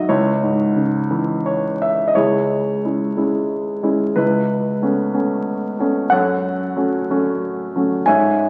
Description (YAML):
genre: classical, lyrical solo piano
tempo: 61 BPM (dotted quarters)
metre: 6/8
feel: rubato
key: C# minor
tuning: A4 = 439 Hz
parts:
  - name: warm concert grand piano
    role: solo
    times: 0.0-8.5 s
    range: C#2 to G#5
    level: -19 LUFS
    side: equal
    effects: none
room: moderate concert hall reverb, RT60 2.4 s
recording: very old 78 rpm record, vinyl crackle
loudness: -19 LUFS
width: mono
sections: 0.0-2.2 A section; 2.2-8.5 B section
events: grand piano fill 1.1-2.2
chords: 0.1 C#m; 4.2 Aadd9/C#; 6.1 F#m